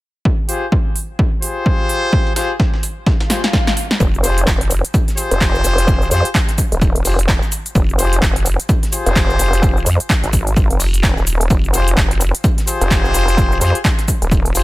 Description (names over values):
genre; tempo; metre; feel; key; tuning
bass house; 128 BPM; 4/4; swing 60% on 16ths; F minor; A4 = 441 Hz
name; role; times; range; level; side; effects
electronic kick drum; drums; 0.3-14.4 s; none; -16 LUFS; equal; overdrive
brilliant horn section; stabs; 0.5-14.6 s; F4 to C5; -21 LUFS; left 2 dB; sidechain pumping, low-pass filter, tape echo
big-room dance drum kit; drums; 0.5-14.6 s; handclaps, hi-hat, shaker, snare drum; -21 LUFS; equal; overdrive
dusty soul sampler-style drum kit; drums; 2.1-14.6 s; hi-hat, snare drum; -30 LUFS; equal; sidechain pumping on hats, high-pass filter on hats, high-pass filter on snare, high-pass filter on room
swell; sound effects; 3.2-4.0 s; none; -26 LUFS; left 2 dB; none
vowel-sweep wobble bass; bass; 4.0-14.6 s; Eb1 to F2; -16 LUFS; equal; chorus, tube saturation, sidechain pumping
room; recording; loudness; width
digital ambience; none; -13 LUFS; side -18 dB against mid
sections
0.3-4.0 A section; 4.0-14.6 B section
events
swell 3.2-4.0; drum fill 3.3-4.0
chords
0.3 Fmadd9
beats
| 0.25 0.72 1.19 1.66 | 2.13 2.60 3.06 3.53 | 4.00 4.47 4.94 5.41 | 5.88 6.35 6.82 7.28 | 7.75 8.22 8.69 9.16 | 9.63 10.10 10.56 11.03 | 11.50 11.97 12.44 12.91 | 13.38 13.85 14.31